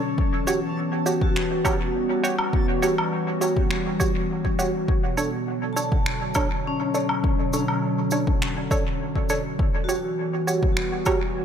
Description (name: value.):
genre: ambient dub.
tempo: 102 BPM.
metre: 4/4.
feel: straight.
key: E dorian.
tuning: A4 = 441 Hz.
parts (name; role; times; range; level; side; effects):
warbly tape-like pad; sustained chords; 0.0-11.4 s; B2 to F#4; -27 LUFS; right 1 dB; chorus, built-in reverb.
vibraphone with medium hard mallets; arpeggios; 0.0-11.4 s; C#4 to A5; -30 LUFS; left 4 dB; dub echo.
electronic kick drum; drums; 0.2-11.2 s; none; -24 LUFS; equal; overdrive.
filtered dub chord stab; stabs; 0.5-11.2 s; D4 to C#5; -27 LUFS; right 3 dB; chorus, cassette tape, dub echo.
cabasa, finger snaps and woodblock; drums; 0.5-11.2 s; none; -31 LUFS; equal; dub echo.
room: moderate echo chamber reverb, RT60 2.0 s.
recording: none.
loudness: -21 LUFS.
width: side -8 dB against mid.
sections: 0.2-11.4 A section.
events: break 0.0.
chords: 0.2 Em69; 4.9 Bm9; 9.6 Em69.